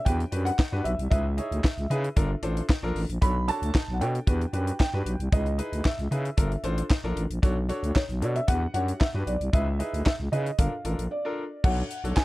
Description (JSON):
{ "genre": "early-eighties boogie funk", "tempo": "114 BPM", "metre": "4/4", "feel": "straight", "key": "unclear", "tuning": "A4 = 441 Hz", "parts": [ { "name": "felt-muted upright piano", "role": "melody", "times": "0.0-12.2 s", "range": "C#5 to B5", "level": "-32 LUFS", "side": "right 1 dB", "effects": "none" }, { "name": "clear grand piano", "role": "accompaniment", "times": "0.1-12.2 s", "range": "D4 to C#5", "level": "-34 LUFS", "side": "left 1 dB", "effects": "none" }, { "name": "growling FM bass", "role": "bass", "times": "0.1-12.1 s", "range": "G1 to C#3", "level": "-27 LUFS", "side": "equal", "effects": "none" }, { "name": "tight funk drum kit", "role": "drums", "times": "0.1-12.2 s", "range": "crash cymbal, handclaps, hi-hat, kick drum, snare drum", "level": "-24 LUFS", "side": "equal", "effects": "none" } ], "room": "little or no reverb", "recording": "dark, warm production", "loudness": "-24 LUFS", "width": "side -18 dB against mid", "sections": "0.0-11.6 A section", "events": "break 11.1-11.6", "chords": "0.1 Em9; 1.1 C#m9; 2.2 Gm9; 3.2 Bm9; 4.3 Em9; 5.3 C#m9; 6.4 Gm9; 7.4 Bm9; 8.5 Em9; 9.5 C#m9; 10.6 Gm9 (rootless); 11.6 Bm9" }